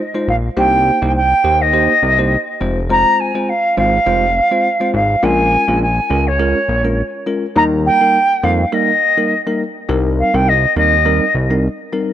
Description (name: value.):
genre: afrobeats.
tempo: 103 BPM.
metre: 4/4.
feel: swing 55% on 16ths.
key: unclear.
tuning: A4 = 439 Hz.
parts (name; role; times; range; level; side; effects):
silver concert flute; melody; 0.0-11.6 s; Db5 to Bb5; -14 LUFS; equal; none.
bell-like tine electric piano; accompaniment; 0.1-12.1 s; G3 to C5; -19 LUFS; moving between left 4 dB and right 6 dB; auto-pan.
fat analog bass; bass; 0.3-11.7 s; F1 to F2; -17 LUFS; equal; none.
room: light reverb.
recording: dry, gritty hardware recording.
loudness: -12 LUFS.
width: side -11 dB against mid.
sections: 0.6-9.9 A section; 9.9-12.1 B section.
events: break 8.7-9.9.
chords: 0.0 Fm7; 0.6 Cm7; 2.6 Fm; 5.2 Bbm7; 7.6 Eb; 9.9 Cm7.